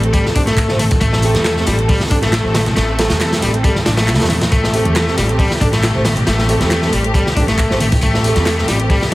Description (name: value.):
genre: breakbeat, breaks.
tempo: 137 BPM.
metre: 4/4.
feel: straight.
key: A minor.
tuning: A4 = 442 Hz.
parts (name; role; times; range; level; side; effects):
bright studio string section; sustained chords; 0.0-9.1 s; A3 to A4; -23 LUFS; left 1 dB; sidechain pumping.
mellow brass ensemble; stabs; 0.0-9.0 s; C4 to C5; -23 LUFS; right 3 dB; digital delay.
upright bass; bass; 0.0-9.1 s; A1 to E2; -18 LUFS; equal; none.
garage drum kit; drums; 0.0-9.1 s; handclaps, hi-hat; -26 LUFS; left 1 dB; none.
overdriven electric guitar; riff; 0.1-9.0 s; G3 to D4; -20 LUFS; left 1 dB; digital delay.
crunchy breakbeat drum kit; drums; 0.1-9.1 s; hi-hat, kick drum, snare drum; -17 LUFS; equal; none.
congas and bongos; percussion; 0.3-9.1 s; none; -25 LUFS; right 1 dB; none.
room: light reverb.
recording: heavily compressed radio sound.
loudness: -12 LUFS.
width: side -18 dB against mid.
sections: 0.0-9.1 A section.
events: none.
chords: 0.0 Am7.